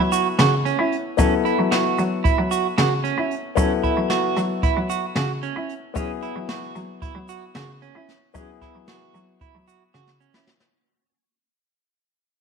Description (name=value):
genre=progressive instrumental, band music in an uneven meter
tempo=226 BPM (eighths)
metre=9/8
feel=straight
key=F# minor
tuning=A4 = 439 Hz
part: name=warm grand piano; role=accompaniment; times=0.0-10.7 s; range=B3 to A4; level=-26 LUFS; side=left 12 dB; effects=none
part: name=rich cello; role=bass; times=0.0-10.7 s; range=C#3 to E4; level=-25 LUFS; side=equal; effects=none
part: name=clean electric guitar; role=arpeggios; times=0.1-10.5 s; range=C#4 to F#4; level=-24 LUFS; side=right 10 dB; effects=wide subtle chorus
part: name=jazz brush drum kit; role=drums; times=0.1-10.7 s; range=hi-hat, kick drum, snare drum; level=-24 LUFS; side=equal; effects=none
part: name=tube shaker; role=percussion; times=0.1-10.3 s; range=none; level=-37 LUFS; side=left 14 dB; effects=none
room=moderate echo chamber reverb, RT60 2.0 s, studio reverb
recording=1960s-style stereo with parts hard left and right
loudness=-19 LUFS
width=side -6 dB against mid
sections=0.0-10.7 A section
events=fade-out 0.0-10.7; drum fill 9.9-10.7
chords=0.0 F#m7